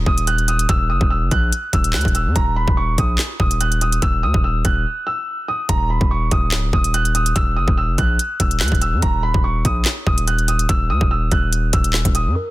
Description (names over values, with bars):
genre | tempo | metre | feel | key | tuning
hip hop, drill | 144 BPM | 4/4 | half-time | Eb phrygian | A4 = 440 Hz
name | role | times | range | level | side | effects
dark grand piano | melody | 0.0-12.5 s | Bb4 to Gb6 | -22 LUFS | right 2 dB | low-pass filter, digital delay
distorted 808-style bass | bass | 0.0-12.4 s | Db1 to Gb2 | -19 LUFS | equal | distortion
drill drum kit | drums | 0.1-12.3 s | handclaps, hi-hat, kick drum, snare drum | -19 LUFS | equal | none
room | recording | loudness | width
digital ambience | dense, heavily limited modern master | -16 LUFS | side -17 dB against mid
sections
0.0-12.4 A section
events
break 4.9-5.7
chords
0.0 Dbsus4 (rootless); 0.7 Ebm; 2.4 Eb5; 4.0 Ebm; 5.7 N.C.; 7.4 Ebm; 9.0 Eb5; 10.7 Ebm